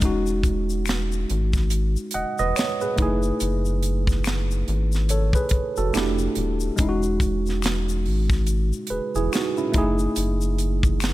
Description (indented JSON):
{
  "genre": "R&B, neo-soul",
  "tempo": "71 BPM",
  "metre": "4/4",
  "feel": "swing 59% on 16ths",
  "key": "E major",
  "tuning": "A4 = 441 Hz",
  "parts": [
    { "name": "tine electric piano", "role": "accompaniment", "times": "0.0-11.1 s", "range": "G#3 to F#5", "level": "-25 LUFS", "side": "moving between left 2 dB and right 6 dB", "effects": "overdrive, auto-pan" },
    { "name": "rubbery square bass", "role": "bass", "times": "0.0-11.1 s", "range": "D#1 to G#1", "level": "-24 LUFS", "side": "equal", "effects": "none" },
    { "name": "tight funk drum kit", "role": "drums", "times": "0.0-11.1 s", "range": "hi-hat, kick drum, snare drum", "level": "-25 LUFS", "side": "equal", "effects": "none" },
    { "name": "egg shaker and finger snaps", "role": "percussion", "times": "0.0-11.1 s", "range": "none", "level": "-36 LUFS", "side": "left 8 dB", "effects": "none" }
  ],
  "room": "small room ambience",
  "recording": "none",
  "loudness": "-20 LUFS",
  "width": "side -16 dB against mid",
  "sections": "0.0-11.1 A section",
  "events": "none",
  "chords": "0.0 Emaj9; 3.0 F#m9; 5.9 Fmaj9; 6.8 Emaj9; 9.7 F#m9"
}